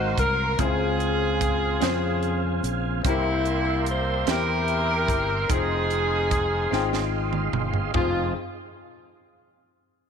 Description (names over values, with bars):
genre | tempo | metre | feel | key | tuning
slow gospel | 49 BPM (dotted quarters) | 6/8 | straight | F minor | A4 = 440 Hz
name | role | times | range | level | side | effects
warm saxophone section | melody | 0.0-8.3 s | G3 to C5 | -26 LUFS | left 1 dB | slapback echo
bright upright piano | accompaniment | 0.0-8.3 s | F2 to G5 | -30 LUFS | left 13 dB | none
tonewheel organ | sustained chords | 0.0-8.3 s | C4 to C6 | -31 LUFS | right 11 dB | slow rotary speaker, chorus vibrato
fingered electric bass | bass | 0.0-8.3 s | F1 to F2 | -28 LUFS | equal | none
crisp fusion drum kit | drums | 0.2-8.1 s | hi-hat, kick drum, snare drum, toms | -28 LUFS | right 4 dB | none
room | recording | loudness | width
light reverb | 1960s-style stereo with parts hard left and right | -22 LUFS | side -7 dB against mid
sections
0.0-7.9 A section; 7.9-10.1 B section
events
drum fill 6.7-7.9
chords
0.0 Ab13; 0.6 Dbmaj7; 3.0 C7; 5.5 Fm7